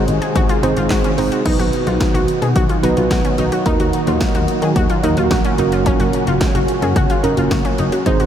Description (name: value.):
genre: synth-pop.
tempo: 109 BPM.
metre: 4/4.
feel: straight.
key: unclear.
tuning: A4 = 440 Hz.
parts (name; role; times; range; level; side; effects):
tine electric piano; accompaniment; 0.0-8.3 s; Bb3 to C5; -20 LUFS; right 4 dB; analog chorus.
warm analog pad; sustained chords; 0.0-8.3 s; Bb2 to Ab4; -21 LUFS; right 1 dB; chorus.
wide unison pluck; arpeggios; 0.0-8.3 s; Db4 to Ab4; -23 LUFS; left 3 dB; ping-pong delay.
solid FM bass; bass; 0.0-8.3 s; Gb1 to Eb3; -19 LUFS; equal; none.
punchy analog drum machine; drums; 0.1-8.3 s; crash cymbal, handclaps, hi-hat, kick drum, snare drum; -19 LUFS; equal; none.
room: moderate huge ambient reverb, RT60 8.0 s.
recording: dreamy mix soaked in reverb.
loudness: -14 LUFS.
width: side -9 dB against mid.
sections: 0.0-1.5 A section; 1.5-8.3 B section.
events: none.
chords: 0.0 Ab; 1.5 B; 3.7 Ebm; 5.6 Gb.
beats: 0.35 0.91 | 1.46 2.01 2.56 3.11 | 3.66 4.21 4.76 5.31 | 5.86 6.41 6.96 7.51 | 8.06.